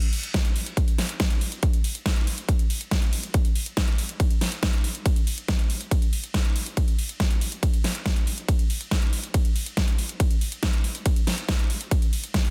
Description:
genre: trance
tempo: 140 BPM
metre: 4/4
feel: straight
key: none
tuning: none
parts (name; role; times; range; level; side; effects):
- big-room dance drum kit; drums; 0.0-12.5 s; hi-hat, ride cymbal, snare drum; -32 LUFS; equal; sidechain pumping on hats, sidechain pumping on cymbals
- electronic kick drum; drums; 0.3-12.4 s; none; -25 LUFS; equal; none
room: little or no reverb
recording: dense, heavily limited modern master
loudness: -25 LUFS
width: mono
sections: 0.0-12.5 A section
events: none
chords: none

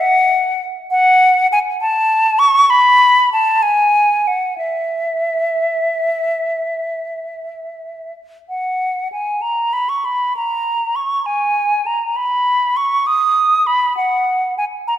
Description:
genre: classical, baroque-style fantasia for unaccompanied flute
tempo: 60-68 BPM (dotted quarters)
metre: 12/8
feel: rubato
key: E major, B major from 8.5 s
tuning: A4 = 440 Hz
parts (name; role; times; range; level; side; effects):
- hollow concert flute; solo; 0.0-14.9 s; E5 to D#6; -14 LUFS; equal; none
room: moderate concert hall reverb, RT60 1.8 s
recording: none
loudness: -13 LUFS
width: side -11 dB against mid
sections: 0.0-8.5 A section; 8.5-15.0 A section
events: none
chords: none

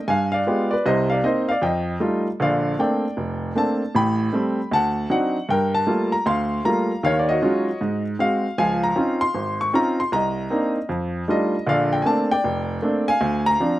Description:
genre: solo jazz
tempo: 155 BPM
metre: 4/4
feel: swing 63% on 8ths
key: Bb major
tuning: A4 = 440 Hz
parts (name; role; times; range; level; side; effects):
- clear baby grand piano; solo; 0.0-13.8 s; F1 to Db6; -19 LUFS; equal; none
room: little or no reverb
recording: recorded outdoors, with no room sound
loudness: -19 LUFS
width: side -15 dB against mid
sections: 0.0-2.4 A section; 2.4-13.8 A section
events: none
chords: 0.1 G7b9; 0.8 Cm7; 1.6 F9; 2.4 Bbmaj9; 3.9 Am7; 4.7 D7b9; 5.5 Gm9; 7.0 Ebm11; 7.8 Ab7; 8.6 Dbmaj9; 10.1 Cm9; 10.9 F13; 11.7 Bbmaj9; 13.2 Dm7b5

